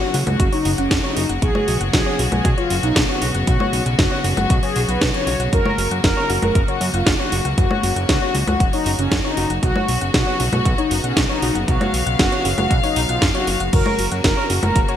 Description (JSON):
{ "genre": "italo disco", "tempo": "117 BPM", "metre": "4/4", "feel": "straight", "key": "unclear", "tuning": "A4 = 439 Hz", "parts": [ { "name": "mellow synth brass", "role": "melody", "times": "0.0-15.0 s", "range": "C#4 to C#5", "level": "-23 LUFS", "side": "left 1 dB", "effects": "chorus, cassette tape, ping-pong delay" }, { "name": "rich chamber string section", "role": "sustained chords", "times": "0.0-15.0 s", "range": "C#3 to E#5", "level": "-25 LUFS", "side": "left 2 dB", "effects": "none" }, { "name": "soft round pluck", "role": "arpeggios", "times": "0.0-15.0 s", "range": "F#4 to F#5", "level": "-28 LUFS", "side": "left 2 dB", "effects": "chorus, ping-pong delay" }, { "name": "fat analog bass", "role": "bass", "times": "0.1-14.9 s", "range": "F#1 to F#2", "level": "-22 LUFS", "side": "equal", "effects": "tube saturation" }, { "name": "house drum kit", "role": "drums", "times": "0.1-15.0 s", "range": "congas, crash cymbal, hi-hat, snare drum", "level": "-22 LUFS", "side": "equal", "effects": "gated reverb" }, { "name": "electronic kick drum", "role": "drums", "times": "0.4-14.9 s", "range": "none", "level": "-20 LUFS", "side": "equal", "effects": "none" } ], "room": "moderate lush hall reverb, RT60 2.0 s, digital ambience", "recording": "bright 1980s-style digital production", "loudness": "-16 LUFS", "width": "side -10 dB against mid", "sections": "0.0-15.0 A section", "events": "none", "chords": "0.0 F#; 1.4 Bsus2; 5.5 F#; 9.6 Bsus2; 13.7 F#", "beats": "0.40 0.91 | 1.42 1.94 2.45 2.96 | 3.48 3.99 4.50 5.01 | 5.53 6.04 6.55 7.07 | 7.58 8.09 8.60 9.12 | 9.63 10.14 10.65 11.17 | 11.68 12.19 12.71 13.22 | 13.73 14.24 14.76" }